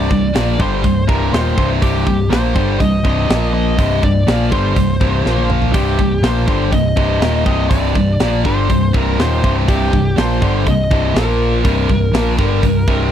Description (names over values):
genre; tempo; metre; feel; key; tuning
heavy metal; 122 BPM; 4/4; straight; C minor; A4 = 440 Hz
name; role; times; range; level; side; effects
high-gain lead guitar; melody; 0.0-13.1 s; G4 to Eb5; -22 LUFS; equal; distortion
heavy high-gain guitar; riff; 0.0-13.1 s; C2 to Bb3; -20 LUFS; right 13 dB; distortion
high-gain distorted guitar; riff; 0.0-13.1 s; C2 to Bb3; -19 LUFS; left 10 dB; distortion
overdriven picked electric bass; bass; 0.0-13.1 s; C1 to Bb1; -18 LUFS; right 1 dB; none
tight metal drum kit; drums; 0.1-13.0 s; hi-hat, kick drum, snare drum, toms; -18 LUFS; right 1 dB; none
room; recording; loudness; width
studio reverb; dry, close 1970s-style studio recording; -12 LUFS; side -10 dB against mid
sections
0.0-13.1 A section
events
drum fill 5.3-5.7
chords
0.0 Cm; 3.3 Bb5; 3.8 C5; 5.3 Bb5; 5.7 Cm; 11.2 Bb5; 11.7 C5